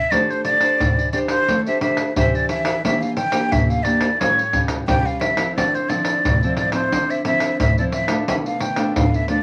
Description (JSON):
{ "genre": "samba and choro", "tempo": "88 BPM", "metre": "4/4", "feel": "straight", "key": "A minor", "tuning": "A4 = 440 Hz", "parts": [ { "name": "breathy jazz flute", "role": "melody", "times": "0.0-9.4 s", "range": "C5 to G5", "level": "-23 LUFS", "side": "equal", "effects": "none" }, { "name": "nylon-string guitar", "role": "accompaniment", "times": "0.1-9.4 s", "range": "A2 to C5", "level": "-26 LUFS", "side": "equal", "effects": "none" }, { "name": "surdo and pandeiro", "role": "percussion", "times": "0.1-9.4 s", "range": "none", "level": "-24 LUFS", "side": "equal", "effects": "none" } ], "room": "wet small room reverb, RT60 0.5 s", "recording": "vinyl crackle", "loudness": "-19 LUFS", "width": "mono", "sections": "0.1-9.4 A section", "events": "none", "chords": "0.1 Am7; 2.8 Em7b5; 4.2 A7b13; 5.6 Dm9; 8.3 Bm7b5" }